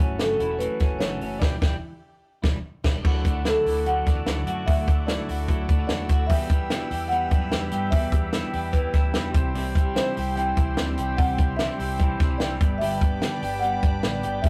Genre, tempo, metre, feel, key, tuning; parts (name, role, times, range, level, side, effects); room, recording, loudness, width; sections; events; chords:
jangly indie pop; 148 BPM; 4/4; straight; D mixolydian from 3.0 s; A4 = 440 Hz
combo organ; accompaniment; 0.0-14.5 s; B3 to C5; -37 LUFS; equal; spring reverb
semi-hollow electric guitar; accompaniment; 0.0-14.5 s; E2 to G4; -36 LUFS; equal
clean electric guitar; arpeggios; 0.0-14.5 s; E2 to G4; -35 LUFS; equal; spring reverb
vintage muted fingered electric bass; bass; 0.0-14.5 s; E1 to G2; -33 LUFS; equal
marimba with soft mallets; melody; 0.2-14.5 s; A4 to G5; -30 LUFS; equal
compact cocktail drum kit; drums; 0.2-14.5 s; crash cymbal, hi-hat, kick drum, snare drum; -26 LUFS; equal
phased analog pad; sustained chords; 3.6-14.5 s; G4 to E6; -41 LUFS; equal; phaser, chorus
moderate small room reverb, RT60 0.5 s; rough rehearsal-room recording, warm saturation; -24 LUFS; mono
0.0-3.0 A section; 3.0-14.5 B section
band accent 1.4-3.0
0.0 F#m7; 1.4 Em7; 3.0 Dadd9; 6.3 Em; 9.3 C; 12.6 G